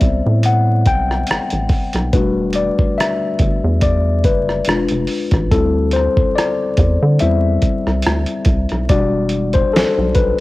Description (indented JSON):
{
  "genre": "R&B, neo-soul",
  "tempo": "71 BPM",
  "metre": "4/4",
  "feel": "swing 54% on 16ths",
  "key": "E minor",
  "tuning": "A4 = 440 Hz",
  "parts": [
    { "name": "tine electric piano", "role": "accompaniment", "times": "0.0-10.4 s", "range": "G3 to G5", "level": "-17 LUFS", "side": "left 3 dB", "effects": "cassette tape" },
    { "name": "rubbery square bass", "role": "bass", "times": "0.0-10.3 s", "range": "E1 to D3", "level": "-18 LUFS", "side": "equal", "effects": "transformer saturation" },
    { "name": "dusty soul sampler-style drum kit", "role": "drums", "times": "0.0-10.4 s", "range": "hi-hat, kick drum, rim click, snare drum", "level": "-17 LUFS", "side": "equal", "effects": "none" }
  ],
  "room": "little or no reverb",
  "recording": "home recording on cassette, vinyl crackle",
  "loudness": "-14 LUFS",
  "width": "side -18 dB against mid",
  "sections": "0.0-8.9 A section; 8.9-10.4 B section",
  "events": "tine electric piano solo 0.0-8.9, 8.9-10.4",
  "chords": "0.0 Am9; 2.1 Em11; 4.7 E7b9; 5.5 D9sus4; 8.9 Em9",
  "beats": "0.44 1.28 | 2.13 2.98 3.82 4.67 | 5.51 6.36 7.20 8.05 | 8.89 9.74"
}